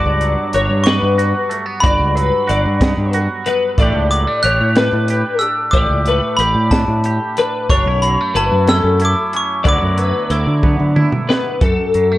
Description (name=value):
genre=math rock and midwest emo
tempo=61 BPM (dotted quarters)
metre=6/8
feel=straight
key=unclear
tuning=A4 = 444 Hz
part: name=glockenspiel with brass mallets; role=melody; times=0.0-11.3 s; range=A5 to F#6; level=-19 LUFS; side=equal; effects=slapback echo
part: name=twangy electric guitar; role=accompaniment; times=0.0-12.2 s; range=D2 to G4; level=-23 LUFS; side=right 4 dB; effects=analog chorus
part: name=twelve-string electric guitar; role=arpeggios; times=0.0-12.2 s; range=A4 to D5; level=-19 LUFS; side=left 4 dB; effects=ensemble chorus
part: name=growling fingered electric bass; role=bass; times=0.0-12.2 s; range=F#1 to D3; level=-17 LUFS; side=equal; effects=overdrive
part: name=compact cocktail drum kit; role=drums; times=0.2-12.1 s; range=hi-hat, kick drum, snare drum, toms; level=-17 LUFS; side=equal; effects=none
room=light reverb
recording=worn, warbling old tape, cassette tape, warbly pitch drift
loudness=-13 LUFS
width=side -15 dB against mid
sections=0.0-11.6 A section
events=drum fill 10.6-11.6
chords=0.0 Gmaj7; 3.8 A7sus4; 7.7 F#m7; 9.7 D69; 11.6 F#m